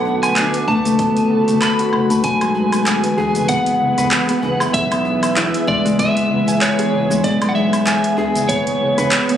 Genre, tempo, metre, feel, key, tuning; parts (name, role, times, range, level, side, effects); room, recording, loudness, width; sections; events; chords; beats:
organic downtempo; 96 BPM; 4/4; swing 56% on 16ths; A4 = 443 Hz
electric slide guitar; melody; 0.0-9.4 s; C#5 to B5; -20 LUFS; equal; tape echo
ethereal airy pad; sustained chords; 0.0-9.4 s; D3 to B4; -23 LUFS; right 2 dB; ensemble chorus, built-in reverb, sidechain pumping
Celtic harp; arpeggios; 0.0-9.4 s; G#3 to G#5; -18 LUFS; left 2 dB; digital delay
round analog bass; bass; 0.0-9.1 s; F#1 to B1; -26 LUFS; right 2 dB; tube saturation
djembe; percussion; 0.1-9.4 s; -34 LUFS; right 2 dB
deep house drum kit; drums; 0.2-9.4 s; handclaps, hi-hat, shaker, woodblock; -21 LUFS; equal; overdrive, small room ambience
electronic kick drum; drums; 0.7-8.6 s; -25 LUFS; right 1 dB; overdrive, small room ambience
moderate lush hall reverb, RT60 1.7 s; recorded on a phone in the room, club reverb; -14 LUFS; side -10 dB against mid
0.0-9.4 A section
0.0 Bm7; 2.2 E
0.36 0.99 1.61 | 2.24 2.87 3.49 4.12 | 4.74 5.37 5.99 6.62 | 7.24 7.87 8.49 9.12